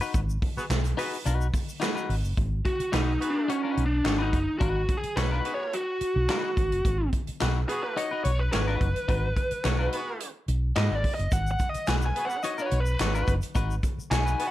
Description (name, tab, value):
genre	funk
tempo	107 BPM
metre	4/4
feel	straight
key	G# minor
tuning	A4 = 440 Hz
part	clean electric guitar	accompaniment	0.0-14.4 s	D#4 to C#5	-33 LUFS	left 6 dB	none
part	egg shaker	percussion	0.0-2.4, 11.3-14.4 s	none	-46 LUFS	left 4 dB	none
part	hollow-body short-scale fingered electric bass	bass	0.1-14.3 s	F#1 to G#2	-27 LUFS	equal	none
part	swinging big-band drum kit	drums	0.1-14.5 s	handclaps, hi-hat, kick drum, snare drum	-29 LUFS	right 1 dB	none
part	clear horn section	second line	0.6-14.5 s	B3 to B4	-34 LUFS	right 1 dB	none
part	biting lead guitar	melody	2.7-14.5 s	C#4 to G#5	-29 LUFS	equal	overdrive
room	light reverb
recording	dark, warm production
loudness	-24 LUFS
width	side -14 dB against mid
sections	0.0-2.4 A section; 2.4-14.5 B section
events	band accent 0.1-2.4; lead electric guitar solo 2.4-14.5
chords	0.0 G#m7